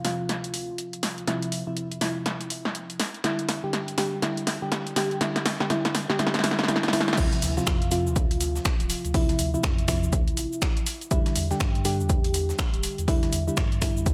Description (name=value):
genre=deep house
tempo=122 BPM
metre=4/4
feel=swing 61% on 16ths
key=D minor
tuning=A4 = 441 Hz
part: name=mellow FM electric piano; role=stabs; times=0.0-14.1 s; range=C3 to G4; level=-31 LUFS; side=equal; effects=chorus, sidechain pumping, low-pass filter, dub echo
part: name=warm sub bass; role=bass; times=0.0-14.1 s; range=D1 to G2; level=-34 LUFS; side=equal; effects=sidechain pumping, high-pass filter
part: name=punchy analog drum machine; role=drums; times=0.0-14.1 s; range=cabasa, crash cymbal, finger snaps, hi-hat, snare drum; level=-30 LUFS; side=equal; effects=none
part: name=breakbeat sampler-style drum kit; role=drums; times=7.2-14.1 s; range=hi-hat, shaker, snare drum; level=-42 LUFS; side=equal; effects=none
part: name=electronic kick drum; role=drums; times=7.2-14.1 s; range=none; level=-27 LUFS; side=equal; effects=none
room=light reverb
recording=none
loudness=-26 LUFS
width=mono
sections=0.0-7.2 A section; 7.2-14.1 B section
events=build-up 0.0-7.2; drum fill 0.0-7.2; filter sweep on FM electric piano 0.0-7.2; drop 7.2-14.1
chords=0.0 Dm9; 3.0 Em7; 7.2 Dm9; 10.9 Em7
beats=0.29 0.78 | 1.27 1.77 2.26 2.75 | 3.24 3.73 4.23 4.72 | 5.21 5.70 6.19 6.68 | 7.18 7.67 8.16 8.65 | 9.14 9.64 10.13 10.62 | 11.11 11.60 12.10 12.59 | 13.08 13.57 14.06